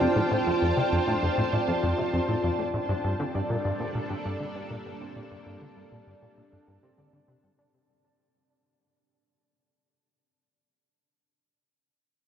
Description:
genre	ambient, sequencer-driven space music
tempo	99 BPM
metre	4/4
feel	straight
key	unclear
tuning	A4 = 440 Hz
part	string machine, full ensemble	sustained chords	0.0-7.7 s	G3 to A5	-29 LUFS	equal	phaser, ensemble chorus
part	concert harp	arpeggios	0.0-10.1 s	C4 to D5	-33 LUFS	equal	auto-pan, ping-pong delay
part	plucky analog bass	riff	0.0-7.7 s	F2 to D4	-28 LUFS	equal	lush chorus, ping-pong delay
part	bubbling stepped-filter texture	texture	0.0-7.7 s	A5	-39 LUFS	right 4 dB	chorus, built-in reverb
room	wet huge ambient reverb, RT60 8.1 s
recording	worn, warbling old tape, cassette tape, warbly pitch drift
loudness	-25 LUFS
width	side -9 dB against mid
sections	0.0-7.7 A section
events	fade-out 0.0-7.7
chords	0.0 F; 2.9 Gm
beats	| 0.47 1.07 1.68 2.28 | 2.89 3.50 4.10 4.71 | 5.31 5.92 6.53 7.13

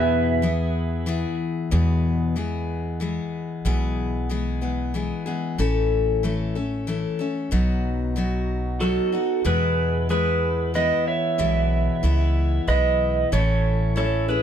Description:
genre	country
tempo	93 BPM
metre	3/4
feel	straight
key	E major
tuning	A4 = 442 Hz
part	pedal steel guitar	melody	0.0-1.4, 8.8-14.4 s	F#4 to E5	-23 LUFS	right 4 dB	none
part	picked steel-string acoustic guitar	accompaniment	0.0-14.4 s	E2 to A4	-25 LUFS	left 4 dB	none
part	pedal steel guitar	sustained chords	0.0-1.7 s	G#4 to E5	-32 LUFS	right 5 dB	none
part	upright bass	bass	0.0-14.4 s	A1 to E2	-24 LUFS	right 1 dB	none
room	light reverb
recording	dark, warm production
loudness	-21 LUFS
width	side -9 dB against mid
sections	0.0-1.7 A section; 1.7-9.5 B section; 9.5-14.4 C section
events	none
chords	0.0 E; 5.6 A; 7.5 B; 9.5 E; 13.3 A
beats	0.43 1.07 | 1.72 2.36 3.01 | 3.65 4.30 4.94 | 5.59 6.23 6.88 | 7.52 8.17 8.81 | 9.46 10.10 10.74 | 11.39 12.03 12.68 | 13.32 13.96

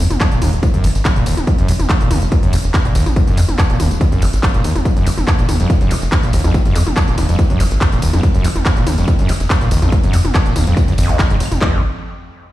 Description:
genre	driving peak-time techno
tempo	142 BPM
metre	4/4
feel	straight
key	F phrygian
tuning	A4 = 440 Hz
part	screaming distorted acid line	riff	0.0-11.8 s	F1 to Bb2	-18 LUFS	equal	distortion, lush chorus, sidechain pumping, dub echo
part	tight sequencer bass	bass	0.0-11.8 s	Eb1 to F2	-18 LUFS	equal	tube saturation, sidechain pumping
part	techno drum kit	drums	0.1-11.6 s	handclaps, hi-hat, ride cymbal, tambourine, toms	-22 LUFS	equal	sidechain pumping on hats, sidechain pumping on cymbals, sidechain pumping on perc, sidechain pumping on toms
part	techno drum kit	drums	0.2-11.7 s	handclaps, kick drum	-16 LUFS	equal	none
room	light reverb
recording	played on a big sound system in a bare room, stone room reverb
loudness	-12 LUFS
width	side -15 dB against mid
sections	0.0-11.6 A section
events	drop 0.0-11.6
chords	none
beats	0.21 0.63 1.05 | 1.47 1.90 2.32 2.74 | 3.16 3.59 4.01 4.43 | 4.85 5.28 5.70 6.12 | 6.54 6.97 7.39 7.81 | 8.23 8.66 9.08 9.50 | 9.92 10.35 10.77 11.19 | 11.61

